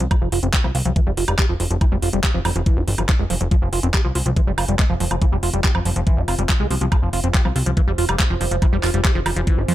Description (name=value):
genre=psychedelic trance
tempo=141 BPM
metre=4/4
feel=straight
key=F minor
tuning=A4 = 441 Hz
part: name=liquid acid bass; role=riff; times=0.0-9.7 s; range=E3 to G4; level=-25 LUFS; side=right 1 dB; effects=phaser, auto-pan, sidechain pumping, dub echo
part: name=plucky analog bass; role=bass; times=0.0-9.7 s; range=F1 to F2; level=-21 LUFS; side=equal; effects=none
part: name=garage drum kit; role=drums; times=0.0-9.7 s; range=handclaps, hi-hat, woodblock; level=-24 LUFS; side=right 1 dB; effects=none
part: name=deep dark ambient pad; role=texture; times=0.0-9.7 s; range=C4 to Ab5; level=-34 LUFS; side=right 1 dB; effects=chorus, built-in reverb, sidechain pumping
part: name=electronic kick drum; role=drums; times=0.1-9.6 s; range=none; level=-18 LUFS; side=equal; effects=none
room=little or no reverb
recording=none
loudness=-17 LUFS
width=side -14 dB against mid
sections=0.0-9.7 A section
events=fade-in on ambient pad 0.0-9.7; filter sweep on acid bass 0.0-9.7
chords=0.0 F5